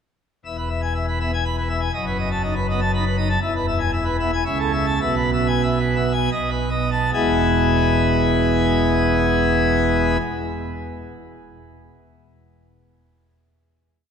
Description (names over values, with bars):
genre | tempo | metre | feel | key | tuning
classical, organ toccata | 69-123 BPM | 3/4 | straight | E major | A4 = 439 Hz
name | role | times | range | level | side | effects
pipe organ, plenum | solo | 0.5-10.2 s | E1 to B5 | -18 LUFS | equal | none
room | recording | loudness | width
wet church reverb, RT60 3.4 s | none | -18 LUFS | side -7 dB against mid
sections
0.5-7.2 A section; 7.2-12.3 final chord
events
slowing down 2.7-7.2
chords
0.5 E; 1.9 B7/F#; 3.4 E; 4.5 A/C#; 5.0 E/B; 6.3 B7; 7.2 E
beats
| 0.46 0.95 1.45 | 1.94 2.43 2.92 | 3.41 3.92 4.45 | 5.02 5.64 6.34 | 7.15 8.01 8.87 | 9.72